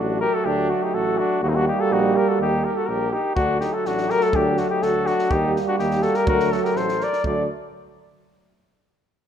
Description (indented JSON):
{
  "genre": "balkan folk, Balkan brass band",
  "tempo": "124 BPM",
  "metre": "2/4",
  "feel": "straight",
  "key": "unclear",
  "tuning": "A4 = 440 Hz",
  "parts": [
    { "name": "warm flugelhorn", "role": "melody", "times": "0.0-7.5 s", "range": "Eb4 to D5", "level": "-22 LUFS", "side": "left 3 dB", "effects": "none" },
    { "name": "mellow trumpet", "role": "second line", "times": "0.0-7.5 s", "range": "A3 to Bb4", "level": "-29 LUFS", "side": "right 3 dB", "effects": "none" },
    { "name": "clear trombone", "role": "accompaniment", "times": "0.0-7.5 s", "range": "A3 to Bb3", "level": "-29 LUFS", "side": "left 2 dB", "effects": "none" },
    { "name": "warm euphonium", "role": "accompaniment", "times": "0.0-7.5 s", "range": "F#3 to G3", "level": "-26 LUFS", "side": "right 6 dB", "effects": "none" },
    { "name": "mellow tuba", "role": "bass", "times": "0.0-7.5 s", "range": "A1 to Eb2", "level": "-27 LUFS", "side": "equal", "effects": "none" },
    { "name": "compact cocktail drum kit", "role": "percussion", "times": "3.4-7.5 s", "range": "kick drum, snare drum", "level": "-30 LUFS", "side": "right 1 dB", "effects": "none" }
  ],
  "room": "moderate recital hall reverb, RT60 1.7 s",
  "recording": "minimal, uncompressed stereo recording",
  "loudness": "-19 LUFS",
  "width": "side -8 dB against mid",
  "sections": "0.0-7.2 A section",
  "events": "none",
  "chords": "0.0 D; 1.4 Eb; 3.4 D; 5.3 Eb; 6.3 D"
}